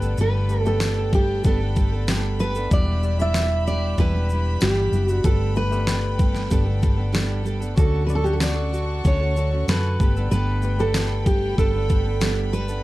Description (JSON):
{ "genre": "acoustic pop", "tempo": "95 BPM", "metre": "4/4", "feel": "straight", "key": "unclear", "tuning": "A4 = 441 Hz", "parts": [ { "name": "fingerpicked steel-string acoustic guitar", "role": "melody", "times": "0.0-12.8 s", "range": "G4 to E5", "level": "-26 LUFS", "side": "right 1 dB", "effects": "none" }, { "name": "bright reed electric piano", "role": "accompaniment", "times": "0.0-12.8 s", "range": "G3 to F#5", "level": "-34 LUFS", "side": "left 6 dB", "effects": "none" }, { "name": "nylon-string guitar", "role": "accompaniment", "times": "0.0-12.8 s", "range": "E2 to A4", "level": "-30 LUFS", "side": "right 4 dB", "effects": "none" }, { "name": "rich studio string section", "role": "sustained chords", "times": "0.0-12.8 s", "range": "G4 to C#6", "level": "-36 LUFS", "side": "left 1 dB", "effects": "none" }, { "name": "hollow-body short-scale fingered electric bass", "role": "bass", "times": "0.0-12.8 s", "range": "E1 to F#2", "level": "-23 LUFS", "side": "equal", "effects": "none" }, { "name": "pop drum kit", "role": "drums", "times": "0.0-12.8 s", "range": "kick drum, shaker, snare drum", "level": "-22 LUFS", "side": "equal", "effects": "overdrive" }, { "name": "tambourine", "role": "percussion", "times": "0.8-12.4 s", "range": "none", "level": "-38 LUFS", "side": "left 6 dB", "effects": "none" } ], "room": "little or no reverb", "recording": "dark, warm production", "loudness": "-19 LUFS", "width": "side -17 dB against mid", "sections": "0.0-12.8 A section", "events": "none", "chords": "0.0 Gadd9; 2.7 Em7; 5.3 Gadd9; 7.8 Dmaj7; 10.0 Gadd9", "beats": "| 0.19 0.82 1.45 2.09 | 2.72 3.35 3.98 4.62 | 5.25 5.88 6.52 7.15 | 7.78 8.41 9.05 9.68 | 10.31 10.94 11.58 12.21" }